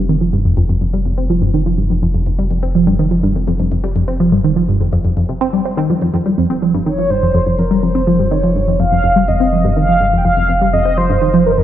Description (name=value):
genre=ambient, sequencer-driven space music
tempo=124 BPM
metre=4/4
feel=straight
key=unclear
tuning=A4 = 440 Hz
part: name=tight sequenced synth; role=riff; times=0.0-11.6 s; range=F2 to C4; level=-14 LUFS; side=equal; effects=chorus, phaser, analog delay
part: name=round analog bass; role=bass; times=0.0-11.6 s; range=F1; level=-19 LUFS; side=equal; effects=none
part: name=mellow horn-like synth lead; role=melody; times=6.9-11.6 s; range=Bb4 to G5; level=-15 LUFS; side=right 1 dB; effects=analog chorus, analog delay
room=wet lush hall reverb, RT60 2.8 s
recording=dark, warm production, faint mains hum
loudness=-12 LUFS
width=side -11 dB against mid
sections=0.0-11.6 A section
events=filter sweep on synth arpeggio sound 0.0-11.6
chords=0.0 Fsus2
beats=| 0.09 0.57 1.06 1.54 | 2.02 2.51 2.99 3.48 | 3.96 4.44 4.93 5.41 | 5.89 6.38 6.86 7.35 | 7.83 8.31 8.80 9.28 | 9.77 10.25 10.73 11.22